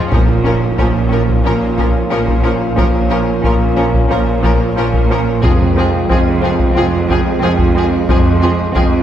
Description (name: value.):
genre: cinematic, epic orchestral film score.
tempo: 90 BPM.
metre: 4/4.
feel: straight.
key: unclear.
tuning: A4 = 441 Hz.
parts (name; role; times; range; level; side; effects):
bright symphonic violin section; melody; 0.0-8.8 s; Ab4 to Bb4; -24 LUFS; left 3 dB; none.
clear symphonic viola section; accompaniment; 0.0-8.8 s; F3; -22 LUFS; right 2 dB; none.
clear studio violin section; second line; 0.1-8.8 s; C4 to Db4; -24 LUFS; left 2 dB; none.
mellow French horn section; sustained chords; 0.1-9.0 s; C4 to F4; -21 LUFS; left 1 dB; none.
warm trombone section; sustained chords; 0.1-9.0 s; F3 to Bb3; -20 LUFS; right 4 dB; none.
bright symphonic cello section; bass; 0.1-9.0 s; F2 to Bb2; -19 LUFS; right 2 dB; none.
rich symphonic double bass section; bass; 0.1-9.0 s; F1 to Bb1; -20 LUFS; right 2 dB; none.
solo taiko drums; drums; 0.1-9.0 s; none; -17 LUFS; left 1 dB; none.
impact; sound effects; 0.1-2.8 s; none; -27 LUFS; equal; none.
timpani; percussion; 5.4-6.4 s; F2; -22 LUFS; right 1 dB; none.
room: wet scoring stage reverb, RT60 1.7 s.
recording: heard from further back in the room.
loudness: -11 LUFS.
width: side -10 dB against mid.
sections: 0.1-9.0 A section.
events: impact 0.1-2.8.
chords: 0.1 Bbm; 5.4 Fm.